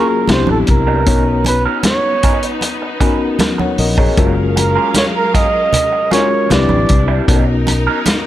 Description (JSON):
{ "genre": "lush 1970s-style soul", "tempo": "77 BPM", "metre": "4/4", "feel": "straight", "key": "unclear", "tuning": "A4 = 440 Hz", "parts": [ { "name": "warm flugelhorn", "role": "melody", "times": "0.0-7.3 s", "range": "A4 to D#5", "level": "-17 LUFS", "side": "right 4 dB", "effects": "none" }, { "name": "reed electric piano", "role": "accompaniment", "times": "0.0-8.3 s", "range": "G#3 to F#5", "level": "-18 LUFS", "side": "left 5 dB", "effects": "fast tremolo" }, { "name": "warm studio string section", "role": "sustained chords", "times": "0.0-8.3 s", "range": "C3 to E#5", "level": "-24 LUFS", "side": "left 1 dB", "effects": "none" }, { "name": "electric guitar through a small old amp", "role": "riff", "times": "0.0-8.1 s", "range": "F#3 to C#5", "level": "-23 LUFS", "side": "right 6 dB", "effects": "wah" }, { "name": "fingered electric bass", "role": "bass", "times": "0.3-7.9 s", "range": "F#1 to C2", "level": "-17 LUFS", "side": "equal", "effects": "none" }, { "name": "warm soul drum kit", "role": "drums", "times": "0.3-8.2 s", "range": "hi-hat, kick drum, snare drum", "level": "-16 LUFS", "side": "equal", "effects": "none" }, { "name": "congas", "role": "percussion", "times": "0.3-8.2 s", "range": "none", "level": "-22 LUFS", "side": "right 4 dB", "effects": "none" } ], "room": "small room reverb", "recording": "none", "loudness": "-11 LUFS", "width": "side -13 dB against mid", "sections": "0.0-8.3 A section", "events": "flugelhorn solo 0.0-8.3", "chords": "0.3 Cmaj9; 1.1 Bmaj9; 4.2 F#maj7; 6.5 Cmaj9; 7.3 Bmaj9" }